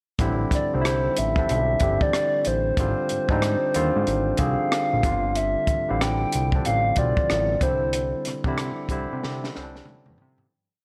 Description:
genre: R&B, neo-soul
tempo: 93 BPM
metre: 4/4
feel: swing 64% on 16ths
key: C major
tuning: A4 = 440 Hz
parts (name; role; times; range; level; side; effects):
- barky tine electric piano; accompaniment; 0.2-10.5 s; D3 to Ab4; -30 LUFS; equal; overdrive
- fat analog bass; bass; 0.2-10.5 s; G1 to C3; -29 LUFS; equal; none
- compact cocktail drum kit; drums; 0.2-10.5 s; hi-hat, kick drum, rim click, snare drum, toms; -29 LUFS; equal; none
- hollow clarinet-like synth lead; melody; 0.5-8.3 s; C5 to G5; -27 LUFS; equal; chorus
room: light reverb, studio reverb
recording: none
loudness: -23 LUFS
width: mono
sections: 0.2-10.5 verse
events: fade-out 7.9-10.5; drum fill 9.2-10.5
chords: 0.2 Am9; 2.8 Ab6; 5.0 G9sus4; 7.6 Cadd9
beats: | 0.19 0.83 1.48 2.12 | 2.77 3.42 4.06 4.71 | 5.35 6.00 6.64 7.29 | 7.93 8.58 9.22 9.87

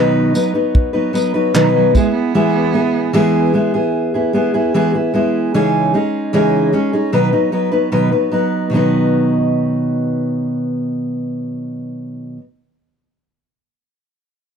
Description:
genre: acoustic pop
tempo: 75 BPM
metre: 4/4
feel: straight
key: B major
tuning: A4 = 440 Hz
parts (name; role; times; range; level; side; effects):
- fingerpicked steel-string acoustic guitar; accompaniment; 0.0-12.4 s; B2 to B4; -14 LUFS; equal; none
- natural country drum kit; drums; 0.3-2.1 s; handclaps, kick drum, tambourine; -16 LUFS; equal; none
- warm cello; second line; 1.5-3.3 s; D#3 to B3; -20 LUFS; right 10 dB; none
room: small room ambience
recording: dry, close 1970s-style studio recording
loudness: -13 LUFS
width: side -7 dB against mid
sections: 0.0-8.7 A section; 8.7-11.9 B section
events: none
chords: 0.0 B; 1.9 E; 5.5 C#madd9; 7.1 B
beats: 0.75 1.55 | 2.35 3.15 3.94 4.74 | 5.54 6.34 7.14 7.94 | 8.74 9.54 10.34 11.13

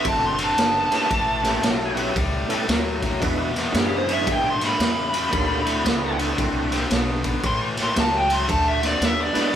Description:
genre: electric blues shuffle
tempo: 114 BPM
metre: 4/4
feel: swing 64% on 8ths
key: unclear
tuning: A4 = 441 Hz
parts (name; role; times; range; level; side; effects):
- dark smooth lead guitar; melody; 0.0-9.6 s; G4 to C6; -22 LUFS; equal; overdrive
- overdriven tonewheel organ; accompaniment; 0.0-9.6 s; G#3 to A4; -27 LUFS; right 2 dB; slow rotary speaker, chorus vibrato
- crunchy overdriven guitar; riff; 0.0-9.6 s; E2 to C4; -27 LUFS; left 2 dB; none
- upright bass; bass; 0.0-9.4 s; F#1 to G#2; -30 LUFS; equal; none
- raw garage drum kit; drums; 0.0-9.4 s; kick drum, ride cymbal, snare drum; -24 LUFS; equal; none
room: moderate studio reverb, RT60 0.7 s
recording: band playing live in one room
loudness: -19 LUFS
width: side -9 dB against mid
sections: 0.0-9.6 A section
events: lead electric guitar solo 0.0-9.6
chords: 0.0 D9; 1.1 A9; 3.2 E9; 5.3 D9; 7.4 A; 8.5 D9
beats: 0.05 0.58 | 1.10 1.63 2.16 2.69 | 3.22 3.74 4.27 4.80 | 5.33 5.85 6.38 6.91 | 7.43 7.96 8.49 9.01 | 9.54

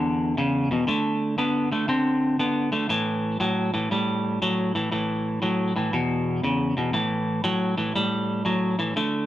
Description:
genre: blues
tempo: 119 BPM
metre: 4/4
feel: swing 66% on 8ths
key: A mixolydian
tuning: A4 = 440 Hz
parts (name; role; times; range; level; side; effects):
- clean electric guitar; solo; 0.0-9.3 s; E2 to C4; -22 LUFS; equal; spring reverb
room: wet studio ambience, RT60 0.5 s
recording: band playing live in one room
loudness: -22 LUFS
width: side -13 dB against mid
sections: 0.0-6.9 A section; 6.9-9.3 B section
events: none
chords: 0.0 E5; 0.9 D5; 2.9 A5; 5.9 E5; 6.9 A5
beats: 0.38 | 0.89 1.39 1.89 2.40 | 2.90 3.41 3.91 4.42 | 4.92 5.42 5.93 6.43 | 6.94 7.44 7.95 8.45 | 8.96

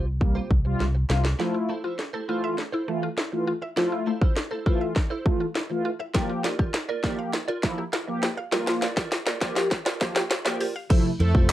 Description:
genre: dance-pop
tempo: 101 BPM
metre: 4/4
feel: straight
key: F major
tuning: A4 = 440 Hz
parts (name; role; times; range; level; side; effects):
- direct-recorded clean electric guitar; riff; 0.0-11.5 s; E4 to D5; -33 LUFS; right 4 dB; ensemble chorus
- vintage muted fingered electric bass; bass; 0.0-1.3, 11.2-11.5 s; C2 to F2; -23 LUFS; equal; sidechain pumping
- mellow synth brass; accompaniment; 0.2-11.5 s; C3 to G4; -27 LUFS; equal; chorus, phaser
- house drum kit; drums; 0.2-11.5 s; crash cymbal, handclaps, hi-hat, kick drum, snare drum; -24 LUFS; equal; none
- mallet-like synth pluck; arpeggios; 1.4-10.9 s; F3 to F5; -34 LUFS; left 1 dB; chorus, phaser, sidechain pumping, analog delay
- supersaw pad; melody; 11.2-11.3 s; A3 to A4; -31 LUFS; right 4 dB; sidechain pumping
room: light reverb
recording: high-pass filter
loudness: -23 LUFS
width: side -13 dB against mid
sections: 0.0-1.4 A section; 1.4-10.9 B section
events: drum fill 0.8-1.4, 1.4-10.9; build-up 1.4-10.9; filter sweep 1.4-10.9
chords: 0.0 Csus4; 1.4 Fmaj7; 6.1 Gm7; 10.9 Fmaj7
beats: 0.21 0.80 | 1.40 1.99 2.58 3.18 | 3.77 4.37 4.96 5.55 | 6.15 6.74 7.34 7.93 | 8.53 9.12 9.71 10.31 | 10.90 11.50

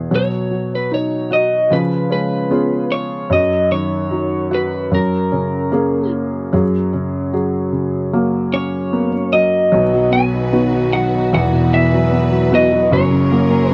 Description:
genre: acoustic folk-pop ballad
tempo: 75 BPM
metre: 4/4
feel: straight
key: B major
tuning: A4 = 441 Hz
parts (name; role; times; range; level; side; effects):
- warm grand piano; accompaniment; 0.0-13.7 s; E1 to F#4; -20 LUFS; equal; none
- felt-muted upright piano; arpeggios; 0.0-13.7 s; E3 to G#4; -22 LUFS; equal; none
- electric guitar through a small old amp; melody; 0.2-13.7 s; A#4 to G#5; -21 LUFS; equal; tremolo
- warm symphonic string section; sustained chords; 9.7-13.7 s; D#3 to B4; -26 LUFS; equal; none
room: light reverb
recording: dry, close 1970s-style studio recording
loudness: -16 LUFS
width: mono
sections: 0.0-6.5 A section; 6.5-9.7 B section; 9.7-13.7 C section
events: none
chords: 0.1 B; 1.7 C#7; 3.3 Badd9/F#; 4.9 F#add9; 9.7 B; 11.3 Esus2; 12.9 F#add9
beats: | 0.10 0.91 1.70 2.50 | 3.30 4.11 4.92 5.73 | 6.54 7.34 8.13 8.93 | 9.73 10.53 11.34 12.13 | 12.92 13.71

